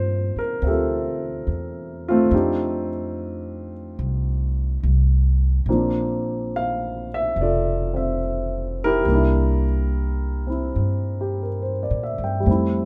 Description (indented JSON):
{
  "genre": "jazz ballad",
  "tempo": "71 BPM",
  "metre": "4/4",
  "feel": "swing 69% on 8ths",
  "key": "unclear",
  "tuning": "A4 = 440 Hz",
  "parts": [
    { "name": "warm grand piano", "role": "accompaniment", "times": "0.0-12.9 s", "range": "Bb2 to G5", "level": "-25 LUFS", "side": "equal", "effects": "none" },
    { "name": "upright bass", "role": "bass", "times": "0.0-12.9 s", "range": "F1 to Bb2", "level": "-25 LUFS", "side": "equal", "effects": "none" }
  ],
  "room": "little or no reverb",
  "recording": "none",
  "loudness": "-22 LUFS",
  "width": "mono",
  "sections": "0.0-12.9 A section",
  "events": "none",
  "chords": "0.0 Gm11; 2.3 F13; 5.7 Bbmaj9; 9.0 C7"
}